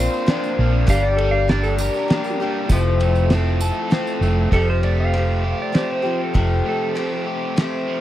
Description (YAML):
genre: folk rock and heartland rock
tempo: 99 BPM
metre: 3/4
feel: straight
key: F major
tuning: A4 = 436 Hz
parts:
  - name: picked acoustic archtop guitar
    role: accompaniment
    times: 0.0-8.0 s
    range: F2 to A4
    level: -24 LUFS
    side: left 5 dB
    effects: none
  - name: mellow tonewheel organ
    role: sustained chords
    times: 0.0-4.5 s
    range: D4 to C5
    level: -30 LUFS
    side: right 2 dB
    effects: slow rotary speaker, overdrive, chorus vibrato
  - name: overdriven electric guitar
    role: riff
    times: 0.0-8.0 s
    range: F3 to C5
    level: -25 LUFS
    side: right 2 dB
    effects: none
  - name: hollow-body short-scale fingered electric bass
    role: bass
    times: 0.0-6.6 s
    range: F1 to Bb1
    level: -19 LUFS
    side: equal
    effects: none
  - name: tambourine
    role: percussion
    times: 0.1-4.3 s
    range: none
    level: -36 LUFS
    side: right 5 dB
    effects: none
  - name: cloth-damped thuddy drum kit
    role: drums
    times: 0.3-7.7 s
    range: kick drum, ride cymbal, snare drum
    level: -17 LUFS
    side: equal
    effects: none
  - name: clean lap steel guitar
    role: second line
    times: 0.9-7.3 s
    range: G4 to F5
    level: -25 LUFS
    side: right 4 dB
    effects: none
room: little or no reverb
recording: dry, close 1970s-style studio recording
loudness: -17 LUFS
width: side -13 dB against mid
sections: 0.0-4.5 A section; 4.5-8.0 B section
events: electric slide guitar solo 4.5-8.0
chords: 0.0 Bbadd9; 0.9 Gm; 2.7 Fmaj7; 4.5 Fadd9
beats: 0.28 | 0.89 1.49 2.09 | 2.70 3.31 3.91 | 4.52 5.13 5.74 | 6.34 6.96 7.57